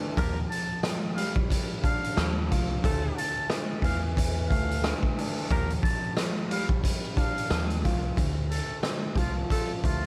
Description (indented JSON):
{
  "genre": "hip hop, boom-bap hip-hop",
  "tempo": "90 BPM",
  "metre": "4/4",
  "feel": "swing 58% on 16ths",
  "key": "D minor",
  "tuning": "A4 = 440 Hz",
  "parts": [
    { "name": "dark baby grand piano", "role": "accompaniment", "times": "0.0-10.1 s", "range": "D2 to F4", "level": "-36 LUFS", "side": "equal", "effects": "high-pass filter, low-pass filter" },
    { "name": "bright saxophone section", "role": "stabs", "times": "0.2-9.7 s", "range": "A3 to Bb4", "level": "-39 LUFS", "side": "equal", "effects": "high-pass filter, low-pass filter, analog delay" },
    { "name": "deep dub fingered electric bass", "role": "bass", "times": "0.2-10.1 s", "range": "C2 to E2", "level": "-32 LUFS", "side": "equal", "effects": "none" },
    { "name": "raw garage drum kit", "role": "drums", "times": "0.2-10.0 s", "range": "hi-hat, kick drum, rim click, snare drum", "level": "-30 LUFS", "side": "equal", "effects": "none" },
    { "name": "trumpet with metal mute", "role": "melody", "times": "0.5-10.1 s", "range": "F4 to A5", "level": "-37 LUFS", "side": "equal", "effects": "high-pass filter, low-pass filter" }
  ],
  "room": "light reverb",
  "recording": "vinyl crackle",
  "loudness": "-28 LUFS",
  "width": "mono",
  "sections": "0.0-8.2 A section; 8.2-10.1 B section",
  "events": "none",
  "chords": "0.2 Ebmaj9; 2.8 Dmadd9; 5.5 Ebmaj9; 8.2 Dm",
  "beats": "| 0.17 0.84 1.50 2.17 | 2.84 3.50 4.17 4.84 | 5.50 6.17 6.84 7.50 | 8.17 8.84 9.51"
}